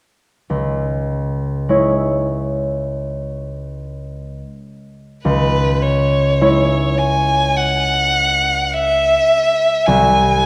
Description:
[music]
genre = classical, romantic duo for violin and harp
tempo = 47-54 BPM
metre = 4/4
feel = rubato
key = C# minor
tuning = A4 = 440 Hz
[part]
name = concert harp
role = accompaniment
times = 0.5-10.5 s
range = B#1 to C#5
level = -20 LUFS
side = equal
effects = none
[part]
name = rich violin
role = melody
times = 5.2-10.5 s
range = B4 to G#5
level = -17 LUFS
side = equal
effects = none
[sound]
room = wet scoring stage reverb, RT60 1.9 s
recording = heard from further back in the room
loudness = -17 LUFS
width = mono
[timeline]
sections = 0.5-5.2 A section; 5.2-10.5 B section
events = none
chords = 0.5 C#m; 9.9 G#/B#

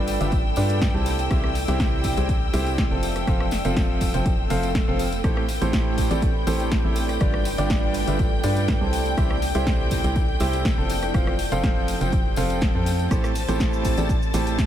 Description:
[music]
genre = piano house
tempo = 122 BPM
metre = 4/4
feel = straight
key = unclear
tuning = A4 = 441 Hz
[part]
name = rich studio string section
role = sustained chords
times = 0.0-14.7 s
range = G5 to A6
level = -32 LUFS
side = left 4 dB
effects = sidechain pumping
[part]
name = clear concert grand piano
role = riff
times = 0.0-14.7 s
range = A2 to A5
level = -26 LUFS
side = right 2 dB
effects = sidechain pumping, analog delay
[part]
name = organ-like FM bass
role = bass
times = 0.0-14.7 s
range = F1 to G2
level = -27 LUFS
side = equal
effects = sidechain pumping
[part]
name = deep dark ambient pad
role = texture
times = 0.0-14.7 s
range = E4 to B5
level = -32 LUFS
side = equal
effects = chorus, built-in reverb, sidechain pumping
[part]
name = house drum kit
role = drums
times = 0.1-14.7 s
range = cabasa, hi-hat, rim click, snare drum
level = -31 LUFS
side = equal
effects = none
[part]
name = tambourine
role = percussion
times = 0.1-14.7 s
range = none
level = -40 LUFS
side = left 2 dB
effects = none
[part]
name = electronic kick drum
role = drums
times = 0.3-14.7 s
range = none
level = -24 LUFS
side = equal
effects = none
[part]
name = swell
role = sound effects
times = 4.4-5.2 s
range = none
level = -39 LUFS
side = equal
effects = none
[sound]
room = light reverb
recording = none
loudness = -20 LUFS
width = side -11 dB against mid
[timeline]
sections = 0.0-14.7 A section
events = swell 4.4-5.2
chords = 0.0 G7; 1.1 F; 5.2 Am7; 7.2 G7; 8.9 C; 10.9 F; 13.1 Am7

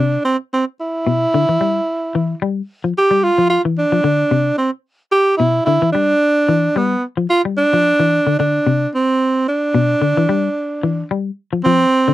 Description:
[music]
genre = afrobeat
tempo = 110 BPM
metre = 4/4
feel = swing 56% on 16ths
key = unclear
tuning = A4 = 440 Hz
[part]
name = breathy tenor saxophone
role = melody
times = 0.0-12.1 s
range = B3 to G4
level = -15 LUFS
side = right 2 dB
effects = none
[part]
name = clean electric guitar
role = arpeggios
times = 0.0-12.1 s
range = B2 to G3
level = -18 LUFS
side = left 4 dB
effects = none
[sound]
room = light reverb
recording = dry, close 1970s-style studio recording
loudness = -14 LUFS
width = side -14 dB against mid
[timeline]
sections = 0.0-11.6 A section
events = none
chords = 0.0 D7(no3); 0.8 Em; 3.0 Dm7; 5.1 Em7; 7.3 Dm7; 9.5 Em7

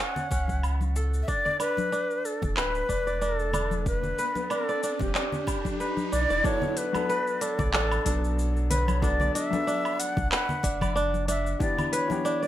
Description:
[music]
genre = organic downtempo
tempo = 93 BPM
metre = 4/4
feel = swing 55% on 16ths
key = unclear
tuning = A4 = 439 Hz
[part]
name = Native American-style cedar flute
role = melody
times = 0.0-12.5 s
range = G4 to F#5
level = -30 LUFS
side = left 1 dB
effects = digital delay
[part]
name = kora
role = arpeggios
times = 0.0-12.5 s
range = C#4 to D5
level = -31 LUFS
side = right 1 dB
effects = none
[part]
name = organic electronic drum kit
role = drums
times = 0.2-12.5 s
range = handclaps, hi-hat, shaker, woodblock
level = -32 LUFS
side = equal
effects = none
[part]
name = congas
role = percussion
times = 0.2-12.2 s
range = none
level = -35 LUFS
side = left 3 dB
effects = none
[part]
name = warm sub bass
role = bass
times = 0.3-11.6 s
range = D1 to C#2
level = -28 LUFS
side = equal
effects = none
[part]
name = electronic kick drum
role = drums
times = 0.3-11.7 s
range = none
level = -31 LUFS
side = equal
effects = none
[part]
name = riser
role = sound effects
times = 2.7-6.4 s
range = none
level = -36 LUFS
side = right 2 dB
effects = none
[part]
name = felt-muted upright piano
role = accompaniment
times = 6.4-12.5 s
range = E3 to A4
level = -33 LUFS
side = left 5 dB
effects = sidechain pumping
[sound]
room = moderate studio reverb, RT60 0.6 s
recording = rough home demo mix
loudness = -24 LUFS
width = side -12 dB against mid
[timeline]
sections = 0.0-6.4 A section; 6.4-12.5 B section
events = riser 2.7-6.4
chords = 0.0 F#m; 1.3 Em7; 6.4 Bm7; 11.6 Em7

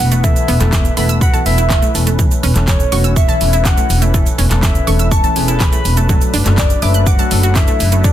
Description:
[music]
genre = dance-pop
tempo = 123 BPM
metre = 4/4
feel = straight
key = A major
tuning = A4 = 440 Hz
[part]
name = soft octave-layered synth lead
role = melody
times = 0.0-8.1 s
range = C#5 to B5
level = -20 LUFS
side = left 2 dB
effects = chorus, phaser, ping-pong delay
[part]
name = filtered supersaw swell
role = sustained chords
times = 0.0-8.1 s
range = E3 to B4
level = -25 LUFS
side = right 1 dB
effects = sidechain pumping
[part]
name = upright bass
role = bass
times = 0.0-8.1 s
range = E1 to F#1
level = -15 LUFS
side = equal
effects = sidechain pumping
[part]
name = pop drum kit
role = drums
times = 0.0-8.1 s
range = handclaps, hi-hat, kick drum, shaker, snare drum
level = -15 LUFS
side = equal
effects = none
[part]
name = egg shaker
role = percussion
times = 0.0-8.1 s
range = none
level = -30 LUFS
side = right 18 dB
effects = none
[part]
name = wide unison pluck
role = arpeggios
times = 0.1-8.1 s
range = E3 to F#6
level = -24 LUFS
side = right 4 dB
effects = sidechain pumping, ping-pong delay
[part]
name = soft electric-piano-like synth keys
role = accompaniment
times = 0.2-8.1 s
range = E3 to B4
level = -22 LUFS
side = left 2 dB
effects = chorus, sidechain pumping
[sound]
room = little or no reverb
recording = dense, heavily limited modern master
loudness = -11 LUFS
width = side -12 dB against mid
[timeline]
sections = 0.0-8.1 A section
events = none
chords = 0.0 Esus4; 1.9 A/E; 6.1 D

